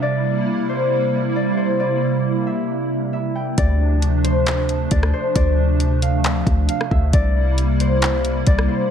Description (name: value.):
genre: hip hop, atmospheric cloud-rap.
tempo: 135 BPM.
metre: 4/4.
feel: half-time.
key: unclear.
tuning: A4 = 440 Hz.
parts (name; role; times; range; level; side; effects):
concert harp; melody; 0.0-8.9 s; C5 to G5; -24 LUFS; left 3 dB; ping-pong delay.
hollow soft pad; sustained chords; 0.0-8.9 s; C3 to E4; -21 LUFS; right 2 dB; ensemble chorus, sidechain pumping.
warm 808-style bass; bass; 3.6-8.7 s; C2 to D2; -18 LUFS; equal; none.
smooth R&B drum kit; drums; 3.6-8.7 s; handclaps, hi-hat, kick drum, rim click; -21 LUFS; equal; vintage 12-bit sampler grit.
room: light reverb, digital ambience.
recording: none.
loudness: -16 LUFS.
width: side -8 dB against mid.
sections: 0.0-8.9 A section.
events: none.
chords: 0.0 C7; 3.6 Dm7; 7.1 C7.